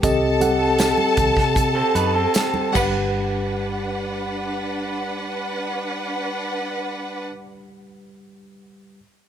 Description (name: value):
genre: lush 1970s-style soul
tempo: 72-81 BPM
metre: 4/4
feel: straight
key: G major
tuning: A4 = 440 Hz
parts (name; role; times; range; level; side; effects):
- bright studio string section; second line; 0.0-7.2 s; D4 to A5; -24 LUFS; equal; none
- mellow tine electric piano; accompaniment; 0.0-9.0 s; G3 to F#5; -25 LUFS; equal; fast stereo tremolo
- vintage muted fingered electric bass; bass; 0.0-7.3 s; G1 to C3; -27 LUFS; equal; none
- modern studio drum kit; drums; 0.0-2.9 s; crash cymbal, hi-hat, kick drum, snare drum; -24 LUFS; equal; none
- congas; percussion; 0.0-3.5 s; none; -34 LUFS; right 5 dB; none
- tambourine; percussion; 0.0-3.5 s; none; -33 LUFS; left 4 dB; none
- electric guitar through a small old amp; riff; 1.8-2.7 s; C4 to B4; -24 LUFS; right 4 dB; none
room: light reverb, small room ambience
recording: none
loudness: -19 LUFS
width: side -9 dB against mid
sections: 0.0-3.2 A section; 3.2-6.5 B section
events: slowing down 0.0-3.2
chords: 0.0 Cm6; 2.8 Gmaj7